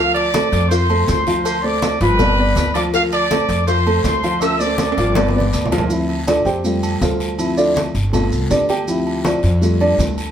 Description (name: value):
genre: latin, salsa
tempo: 162 BPM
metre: 4/4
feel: straight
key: unclear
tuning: A4 = 440 Hz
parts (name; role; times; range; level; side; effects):
- mellow trumpet section; melody; 0.0-5.7 s; B4 to E6; -19 LUFS; equal; none
- dark upright piano; accompaniment; 0.0-10.2 s; F3 to G5; -19 LUFS; equal; none
- upright bass; bass; 0.0-10.3 s; G1 to F2; -20 LUFS; equal; none
- agogo bells and timbales; percussion; 0.2-10.3 s; none; -28 LUFS; right 6 dB; none
- congas; percussion; 0.2-10.2 s; none; -25 LUFS; left 1 dB; none
- cowbell and bongos; percussion; 0.2-5.9 s; none; -26 LUFS; left 7 dB; none
- guiro; percussion; 0.3-10.3 s; none; -33 LUFS; left 3 dB; none
- maracas; percussion; 0.3-10.3 s; none; -33 LUFS; right 2 dB; none
room: moderate studio reverb, RT60 0.8 s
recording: band playing live in one room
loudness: -14 LUFS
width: side -9 dB against mid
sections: 0.0-5.9 A section; 5.9-10.3 B section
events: drum fill 4.4-5.9; upright piano solo 5.9-10.3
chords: 0.0 Dm7; 2.2 G7; 2.9 Dm7; 5.2 G7; 5.9 Dm7; 6.7 Fadd9; 7.4 Dm7; 8.1 G7; 8.9 Dm7; 9.6 Fadd9